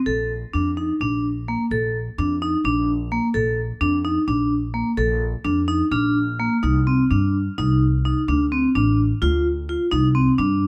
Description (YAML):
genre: contemporary instrumental, chamber music in an uneven meter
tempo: 256 BPM (eighths)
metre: 7/8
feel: straight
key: unclear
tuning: A4 = 439 Hz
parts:
  - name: vibraphone with hard mallets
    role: arpeggios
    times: 0.1-10.6 s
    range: Bb3 to A4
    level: -23 LUFS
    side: equal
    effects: none
  - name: upright bass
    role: bass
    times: 0.1-10.7 s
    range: A1 to G2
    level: -25 LUFS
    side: equal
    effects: none
  - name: glockenspiel with hard plastic mallets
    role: texture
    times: 5.9-6.8 s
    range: F6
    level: -36 LUFS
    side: equal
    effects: none
room: little or no reverb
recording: close, detailed microphones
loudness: -21 LUFS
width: mono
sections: 0.0-6.6 A section; 6.6-10.7 B section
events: none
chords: 0.1 Bbmaj7; 6.6 Cm; 8.3 Dm; 9.9 Cm